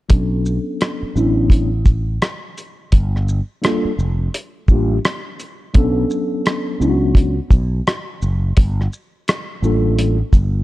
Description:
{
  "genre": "hip hop, jazz-hop",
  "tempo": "85 BPM",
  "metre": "4/4",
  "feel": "swing 62% on 16ths",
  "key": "unclear",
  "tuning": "A4 = 439 Hz",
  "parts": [
    { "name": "mellow tine electric piano", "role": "accompaniment", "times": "0.1-10.2 s", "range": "F#3 to A4", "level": "-20 LUFS", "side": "equal", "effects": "fast stereo tremolo, low-pass filter" },
    { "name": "sustaining fretless electric bass", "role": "bass", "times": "0.1-10.6 s", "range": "F1 to C#2", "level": "-18 LUFS", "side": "equal", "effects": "none" },
    { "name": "cloth-damped thuddy drum kit", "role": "drums", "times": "0.1-10.5 s", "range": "hi-hat, kick drum, rim click, shaker", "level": "-14 LUFS", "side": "equal", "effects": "vintage 12-bit sampler grit" }
  ],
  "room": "little or no reverb",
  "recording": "cassette tape",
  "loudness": "-15 LUFS",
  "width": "side -17 dB against mid",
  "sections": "0.1-5.7 A section; 5.7-10.6 B section",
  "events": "filter sweep on tine electric piano 0.1-5.7",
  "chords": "0.1 Bm9; 2.9 Gm9; 5.7 Bm9; 8.6 Gm9"
}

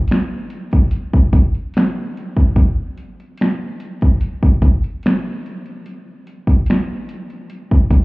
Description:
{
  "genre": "R&B",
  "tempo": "73 BPM",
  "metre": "4/4",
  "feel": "swing 54% on 16ths",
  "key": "none",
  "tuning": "none",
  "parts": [
    { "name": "pop drum kit", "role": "drums", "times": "0.1-8.0 s", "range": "finger snaps, hi-hat, kick drum, snare drum", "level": "-15 LUFS", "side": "equal", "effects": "overdrive" }
  ],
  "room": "moderate plate reverb, RT60 3.7 s",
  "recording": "heard muffled through a wall, club reverb, EQ",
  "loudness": "-14 LUFS",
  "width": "side -24 dB against mid",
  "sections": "0.0-2.6 A section; 2.6-8.0 B section",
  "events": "none",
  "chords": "none"
}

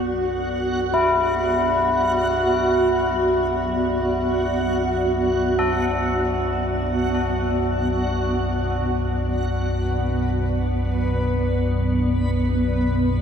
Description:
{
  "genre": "dark ambient drone",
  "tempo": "free time",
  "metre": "none",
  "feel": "none",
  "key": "B minor",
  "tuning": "A4 = 440 Hz",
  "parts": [
    { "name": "granular cloud pad", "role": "sustained chords", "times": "0.0-13.2 s", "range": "B3 to D5", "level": "-25 LUFS", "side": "equal", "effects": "built-in reverb, shimmer reverb" },
    { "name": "tubular bells", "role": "arpeggios", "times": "0.0-13.2 s", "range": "E4 to A4", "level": "-25 LUFS", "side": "left 2 dB", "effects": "ping-pong delay, shimmer reverb" },
    { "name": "deep rumbling drone", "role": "drone", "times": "0.0-13.2 s", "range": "B1 to F#2", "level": "-25 LUFS", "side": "left 1 dB", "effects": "built-in reverb" },
    { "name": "backwards swelling texture", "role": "texture", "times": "0.0-13.2 s", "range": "F#4 to B4", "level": "-25 LUFS", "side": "right 2 dB", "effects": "built-in reverb, shimmer reverb" }
  ],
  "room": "wet cathedral reverb, RT60 7.7 s",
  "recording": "cassette tape",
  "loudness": "-19 LUFS",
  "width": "side -7 dB against mid",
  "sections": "0.0-13.2 A section",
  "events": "fade-in on synth drone 0.0-13.2; fade-in on ambient pad 0.0-13.2",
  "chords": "0.0 Bmadd11"
}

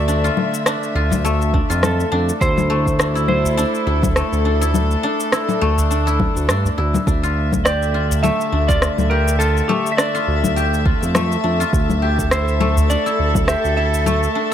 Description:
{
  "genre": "organic downtempo",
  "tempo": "103 BPM",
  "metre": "4/4",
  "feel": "swing 56% on 16ths",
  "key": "D minor",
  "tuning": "A4 = 441 Hz",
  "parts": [
    { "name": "clean lap steel guitar", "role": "melody", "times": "0.0-14.3 s", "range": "G4 to E5", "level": "-23 LUFS", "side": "right 2 dB", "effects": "ping-pong delay" },
    { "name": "warm chamber string section", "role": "sustained chords", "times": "0.0-14.5 s", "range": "D3 to E5", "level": "-24 LUFS", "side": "left 1 dB", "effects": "sidechain pumping" },
    { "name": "guzheng", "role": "arpeggios", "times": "0.0-14.5 s", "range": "A3 to G4", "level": "-22 LUFS", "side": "left 2 dB", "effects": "ping-pong delay" },
    { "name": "smooth gliding synth bass", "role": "bass", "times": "0.0-14.3 s", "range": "D2 to G2", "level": "-19 LUFS", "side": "right 1 dB", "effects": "none" },
    { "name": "electronic shaker, congas and rim click", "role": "drums", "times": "0.1-14.3 s", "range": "none", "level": "-22 LUFS", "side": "left 3 dB", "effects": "none" },
    { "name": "udu", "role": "percussion", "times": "1.1-12.9 s", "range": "none", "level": "-24 LUFS", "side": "right 2 dB", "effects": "none" },
    { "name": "electronic kick drum", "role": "drums", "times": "1.5-13.5 s", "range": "none", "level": "-20 LUFS", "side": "right 1 dB", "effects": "none" },
    { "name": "twinkling granular texture", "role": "texture", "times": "8.0-14.5 s", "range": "A4", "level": "-32 LUFS", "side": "right 2 dB", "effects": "built-in reverb" }
  ],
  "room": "light reverb",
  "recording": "none",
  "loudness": "-15 LUFS",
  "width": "side -10 dB against mid",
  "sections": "0.0-14.5 A section",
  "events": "none",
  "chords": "0.0 Dm; 2.4 Am/D; 7.1 Dm"
}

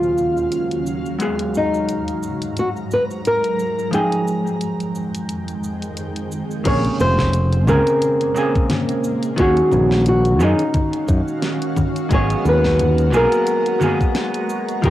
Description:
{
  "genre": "sunset chillout",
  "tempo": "88 BPM",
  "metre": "4/4",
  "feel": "swing 57% on 16ths",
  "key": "Bb minor",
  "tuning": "A4 = 440 Hz",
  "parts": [
    { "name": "flamenco guitar", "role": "melody", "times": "0.0-14.9 s", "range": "Eb4 to Db5", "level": "-20 LUFS", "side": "equal", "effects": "cassette tape, analog delay, plate reverb" },
    { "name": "vintage hollow-body jazz guitar", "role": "accompaniment", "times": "0.0-14.9 s", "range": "C3 to G5", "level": "-23 LUFS", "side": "equal", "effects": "auto-pan, cassette tape, analog delay" },
    { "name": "shimmering ambient pad", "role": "sustained chords", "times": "0.0-14.9 s", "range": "Eb2 to Bb5", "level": "-26 LUFS", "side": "right 1 dB", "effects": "chorus, built-in reverb, phaser, cassette tape" },
    { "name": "smooth R&B drum kit", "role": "drums", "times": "0.0-14.9 s", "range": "cabasa, congas, crash cymbal, hi-hat, snare drum", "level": "-25 LUFS", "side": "left 1 dB", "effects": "cassette tape" },
    { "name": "modern bright fingered electric bass", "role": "bass", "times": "6.7-14.9 s", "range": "F1 to Gb2", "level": "-18 LUFS", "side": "equal", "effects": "none" },
    { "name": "electronic kick drum", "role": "drums", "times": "6.7-14.9 s", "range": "none", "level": "-20 LUFS", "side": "equal", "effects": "cassette tape" }
  ],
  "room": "wet booth ambience, RT60 0.3 s",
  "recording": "home recording on cassette",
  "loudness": "-16 LUFS",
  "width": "side -14 dB against mid",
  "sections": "0.0-6.7 A section; 6.7-14.9 B section",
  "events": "none",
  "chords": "0.0 Ebm9; 1.2 Abm9; 3.9 Fm9; 6.7 Bbm9; 9.4 Ebm9; 12.1 Abm9"
}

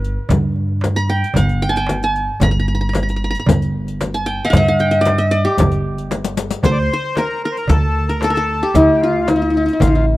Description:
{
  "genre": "Arabic maqam ensemble",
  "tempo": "114 BPM",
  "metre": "4/4",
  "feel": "straight",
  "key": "G maqam huzam",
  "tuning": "A4 = 440 Hz",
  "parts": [
    { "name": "qanun", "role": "melody", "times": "0.0-10.2 s", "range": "E4-50c to Bb5+50c", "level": "-18 LUFS", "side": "equal", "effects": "none" },
    { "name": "upright bass", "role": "bass", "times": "0.0-10.2 s", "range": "G1 to G2", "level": "-19 LUFS", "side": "equal", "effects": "none" },
    { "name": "darbuka", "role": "percussion", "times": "0.0-10.0 s", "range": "none", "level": "-22 LUFS", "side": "right 2 dB", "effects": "none" },
    { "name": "riq", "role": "percussion", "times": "0.0-9.9 s", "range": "none", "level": "-26 LUFS", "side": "left 6 dB", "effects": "none" },
    { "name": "frame drum", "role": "percussion", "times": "0.3-9.9 s", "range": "none", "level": "-19 LUFS", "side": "left 1 dB", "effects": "none" },
    { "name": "accordion", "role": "second line", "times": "6.6-10.1 s", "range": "E4-50c to D5", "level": "-23 LUFS", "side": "left 4 dB", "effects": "none" }
  ],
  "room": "light reverb",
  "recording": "dry, close 1970s-style studio recording",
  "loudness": "-14 LUFS",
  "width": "side -17 dB against mid",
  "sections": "0.0-6.6 A section; 6.6-10.2 B section",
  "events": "drum fill 6.1-6.6",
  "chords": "none"
}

